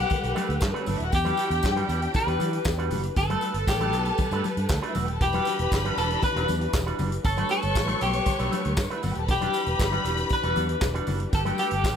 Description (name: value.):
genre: disco.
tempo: 118 BPM.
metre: 4/4.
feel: straight.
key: E dorian.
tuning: A4 = 438 Hz.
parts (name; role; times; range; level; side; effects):
clean electric guitar; melody; 0.0-12.0 s; G4 to B4; -28 LUFS; left 2 dB; tremolo.
warm studio string section; second line; 0.0-12.0 s; A3 to C#6; -31 LUFS; left 2 dB; none.
warm studio string section; sustained chords; 0.0-12.0 s; E3 to B4; -35 LUFS; equal; none.
fingered electric bass; bass; 0.0-12.0 s; D#1 to E3; -28 LUFS; right 1 dB; none.
electric guitar with an envelope filter; accompaniment; 0.1-11.9 s; G3 to B4; -34 LUFS; right 7 dB; lush chorus.
vintage drum kit; drums; 0.1-12.0 s; handclaps, hi-hat, kick drum, snare drum; -29 LUFS; equal; none.
congas; percussion; 0.1-11.7 s; none; -35 LUFS; left 6 dB; none.
tambourine; percussion; 0.1-12.0 s; none; -44 LUFS; left 6 dB; none.
room: small room ambience.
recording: none.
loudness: -23 LUFS.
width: side -8 dB against mid.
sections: 0.0-12.0 A section.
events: none.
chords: 0.0 Gmaj9; 1.1 Em9; 3.2 Gmaj9; 5.2 Em9; 7.2 Gmaj9; 9.3 Em9; 11.3 Gmaj9.